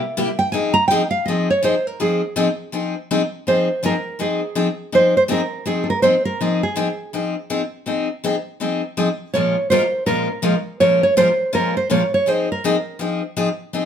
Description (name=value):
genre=jazz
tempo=164 BPM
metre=4/4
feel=swing 61% on 8ths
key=F minor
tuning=A4 = 440 Hz
part: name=nylon-string guitar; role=melody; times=0.0-7.1, 9.3-13.0 s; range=Ab4 to Bb5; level=-18 LUFS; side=right 2 dB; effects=plate reverb
part: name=picked steel-string acoustic guitar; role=accompaniment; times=0.2-13.9 s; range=Bb2 to Bb4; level=-20 LUFS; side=left 3 dB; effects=none
room=moderate studio reverb, RT60 0.7 s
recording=none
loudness=-17 LUFS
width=side -8 dB against mid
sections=0.0-3.5 A section; 3.5-13.9 B section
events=nylon-string guitar solo 0.0-3.5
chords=0.0 C7; 0.5 Fm7; 9.3 Bbm7; 12.3 Fm7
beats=0.16 | 0.52 0.89 1.26 1.62 | 1.99 2.35 2.72 3.09 | 3.46 3.82 4.19 4.55 | 4.92 5.29 5.66 6.02 | 6.39 6.76 7.12 7.49 | 7.86 8.22 8.59 8.96 | 9.32 9.69 10.06 10.43 | 10.79 11.16 11.53 11.89 | 12.26 12.63 13.00 13.37 | 13.73